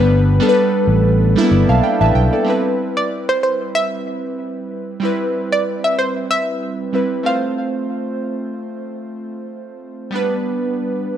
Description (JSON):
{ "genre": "afrobeats", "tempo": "94 BPM", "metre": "4/4", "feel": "swing 55% on 16ths", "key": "C major", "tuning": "A4 = 440 Hz", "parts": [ { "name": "glassy digital keys", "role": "accompaniment", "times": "0.0-11.2 s", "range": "G3 to A5", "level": "-18 LUFS", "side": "equal", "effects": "chorus" }, { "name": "fingered electric bass", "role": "bass", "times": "0.0-2.3 s", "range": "G1 to B1", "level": "-14 LUFS", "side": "equal", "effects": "none" }, { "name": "analog pluck", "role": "melody", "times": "3.0-7.4 s", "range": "C5 to F5", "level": "-19 LUFS", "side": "right 1 dB", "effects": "chorus, analog delay" } ], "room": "light reverb", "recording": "dry, gritty hardware recording", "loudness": "-15 LUFS", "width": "side -10 dB against mid", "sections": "0.0-2.5 A section; 2.5-11.2 B section", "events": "synth keys fill 1.2-2.5", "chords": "0.0 G; 2.5 Cmaj7; 7.3 F; 10.1 G" }